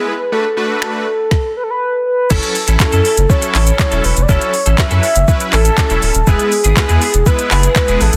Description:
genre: dance-pop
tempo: 121 BPM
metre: 4/4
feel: straight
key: F# minor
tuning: A4 = 440 Hz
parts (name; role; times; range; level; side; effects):
- mellow horn-like synth lead; melody; 0.0-8.2 s; G#4 to E5; -19 LUFS; equal; chorus, tape echo
- big bright polysynth; accompaniment; 0.0-8.0 s; F#3 to B4; -24 LUFS; equal; chorus, sidechain pumping
- smooth R&B drum kit; drums; 0.8-8.2 s; crash cymbal, finger snaps, handclaps, hi-hat, kick drum, shaker, snare drum; -18 LUFS; equal; soft clipping on snare
- direct-recorded clean electric guitar; riff; 2.3-8.2 s; B3 to A4; -25 LUFS; equal; ensemble chorus
- saturated sub bass; bass; 2.3-8.2 s; D1 to F#2; -16 LUFS; equal; sidechain pumping
- group handclap; percussion; 2.8-7.9 s; none; barely audible; none; none
room: light reverb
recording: dense, heavily limited modern master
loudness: -14 LUFS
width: mono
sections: 0.0-2.3 A section; 2.3-8.2 B section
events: none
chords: 0.3 Bm7; 1.3 N.C.; 2.3 F#m7; 6.3 E

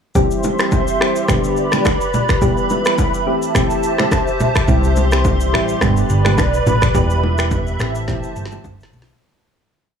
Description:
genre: afrobeats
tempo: 106 BPM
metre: 4/4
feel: swing 55% on 16ths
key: unclear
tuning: A4 = 441 Hz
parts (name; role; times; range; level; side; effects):
- soft electric-piano-like synth keys; accompaniment; 0.1-8.7 s; D3 to G4; -20 LUFS; equal; chorus
- hollow soft pad; sustained chords; 0.2-9.2 s; G4 to C6; -20 LUFS; equal; ensemble chorus
- afro-pop drum kit; drums; 0.2-9.2 s; finger snaps, kick drum, rim click, shaker, snare drum, toms; -19 LUFS; equal; none
- congas and bongos; percussion; 0.2-9.1 s; none; -23 LUFS; equal; none
- hollow-body short-scale fingered electric bass; bass; 4.7-9.1 s; E1 to C2; -18 LUFS; equal; none
room: digital ambience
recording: dry, gritty hardware recording, transformer saturation, studio ambience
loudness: -14 LUFS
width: side -7 dB against mid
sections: 0.2-9.2 verse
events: fade-out 6.9-9.2; drum fill 8.1-9.2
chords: 0.2 C; 1.3 G; 2.4 Em; 3.3 Am7; 4.7 C; 5.8 G; 6.9 Em; 7.8 Am7

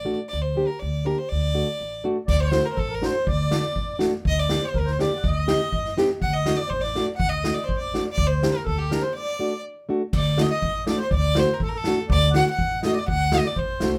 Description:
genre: klezmer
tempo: 122 BPM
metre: 2/4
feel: straight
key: D phrygian dominant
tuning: A4 = 442 Hz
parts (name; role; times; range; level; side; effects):
- bright violin; melody; 0.0-13.9 s; G4 to F#5; -30 LUFS; equal; none
- nylon-string guitar; accompaniment; 0.0-13.9 s; A3 to G4; -27 LUFS; equal; none
- upright bass; bass; 0.0-14.0 s; A1 to G2; -28 LUFS; equal; none
- mellow accordion; second line; 2.3-13.9 s; G4 to F#5; -33 LUFS; equal; none
- street-band drum kit; drums; 2.3-13.9 s; crash cymbal, kick drum, snare drum; -30 LUFS; equal; none
room: moderate studio reverb, RT60 0.6 s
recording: none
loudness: -23 LUFS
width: mono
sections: 0.0-2.3 A section; 2.3-10.1 A section; 10.1-14.0 B section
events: break 9.2-10.1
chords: 0.3 Gm/D; 1.3 D; 4.3 Gm/D; 5.2 Cm/D; 6.2 D; 8.2 Gm/D; 9.2 D

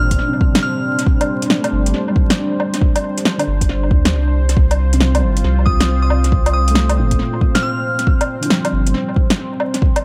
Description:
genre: future garage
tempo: 137 BPM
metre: 4/4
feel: swing 64% on 16ths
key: unclear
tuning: A4 = 440 Hz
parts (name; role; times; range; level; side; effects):
- glassy synth bell; melody; 0.0-1.1, 5.7-8.1 s; Eb6 to F6; -26 LUFS; equal; chorus, tape echo
- felt-muted upright piano; accompaniment; 0.0-10.0 s; Bb2 to A3; -26 LUFS; equal; sidechain pumping, dub echo
- dark analog pad; sustained chords; 0.0-10.0 s; G3 to C5; -26 LUFS; equal; chorus, sidechain pumping
- warm sub bass; bass; 0.0-8.9 s; G1 to Eb2; -18 LUFS; equal; sidechain pumping
- deep house drum kit; drums; 0.1-10.0 s; hi-hat, snare drum, woodblock; -22 LUFS; equal; tape echo
- electronic kick drum; drums; 0.1-9.9 s; none; -17 LUFS; equal; none
room: light reverb, digital ambience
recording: echo-heavy mix, vinyl crackle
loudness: -16 LUFS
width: mono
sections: 0.0-10.0 A section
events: none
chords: 0.0 Csus2

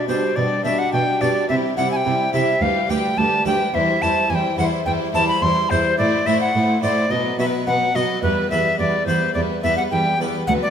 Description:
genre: classical, baroque-style concerto movement with solo episodes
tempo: 107 BPM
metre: 4/4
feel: straight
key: E minor from 6.0 s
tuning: A4 = 440 Hz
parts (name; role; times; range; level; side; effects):
- alto recorder; melody; 0.0-10.7 s; B4 to C6; -20 LUFS; left 1 dB; none
- warm chamber violin section; melody; 0.0-10.7 s; G4 to C5; -32 LUFS; left 6 dB; none
- warm chamber violin section; second line; 0.0-10.7 s; B3 to G4; -26 LUFS; left 3 dB; none
- harpsichord; accompaniment; 0.0-10.7 s; D2 to C5; -27 LUFS; right 2 dB; none
- rich chamber viola section; accompaniment; 0.0-10.7 s; F#3 to A3; -27 LUFS; right 3 dB; none
- rich symphonic cello section; bass; 0.1-10.6 s; D2 to C3; -25 LUFS; right 3 dB; none
room: wet recital hall reverb, RT60 1.7 s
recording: none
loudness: -17 LUFS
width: side -8 dB against mid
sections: 0.0-10.7 A section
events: none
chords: 0.0 G/B; 1.5 C; 2.6 G/D; 3.7 C/E; 6.0 Am; 7.1 B5; 8.2 Em

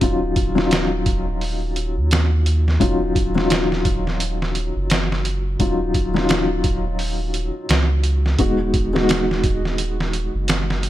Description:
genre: trip hop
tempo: 86 BPM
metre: 4/4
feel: swing 59% on 16ths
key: Eb minor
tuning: A4 = 439 Hz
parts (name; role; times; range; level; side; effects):
- felt-muted upright piano; accompaniment; 0.0-10.9 s; Gb3 to Gb4; -22 LUFS; left 2 dB; tremolo, tape echo
- soft dub sub bass; bass; 0.0-10.9 s; Eb1 to Eb2; -22 LUFS; equal; none
- trip hop sampler-style drum kit; drums; 0.0-10.9 s; hi-hat, kick drum, snare drum; -22 LUFS; right 1 dB; studio reverb
room: little or no reverb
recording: none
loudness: -17 LUFS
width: side -14 dB against mid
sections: 0.0-10.9 A section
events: none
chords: 0.0 Ebm9; 8.4 Abm7/Eb

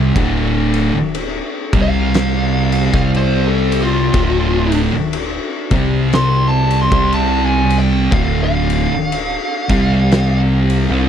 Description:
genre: stoner and doom metal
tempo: 60 BPM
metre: 4/4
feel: swing 58% on 8ths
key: unclear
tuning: A4 = 443 Hz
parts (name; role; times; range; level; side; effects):
- string machine, violas; sustained chords; 0.0-11.1 s; G3 to F5; -29 LUFS; equal; none
- thick fuzz guitar; riff; 0.0-11.1 s; D2 to C4; -20 LUFS; left 10 dB; distortion
- thick fuzz guitar; riff; 0.0-11.1 s; D2 to C4; -18 LUFS; right 8 dB; distortion
- fat analog bass; bass; 0.0-11.1 s; D1 to C2; -19 LUFS; equal; overdrive
- oversized low-tuned drum kit; drums; 0.2-10.9 s; kick drum, ride cymbal, snare drum; -21 LUFS; left 1 dB; none
- fuzz lead guitar; melody; 1.8-10.4 s; F4 to C6; -20 LUFS; equal; distortion, tape echo
room: little or no reverb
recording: dry, close 1970s-style studio recording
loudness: -13 LUFS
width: side -9 dB against mid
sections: 0.0-11.1 A section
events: lead electric guitar solo 0.0-11.1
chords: 0.2 D5; 1.6 C5; 4.1 Dm; 5.6 C5; 8.1 Dm; 9.6 C5

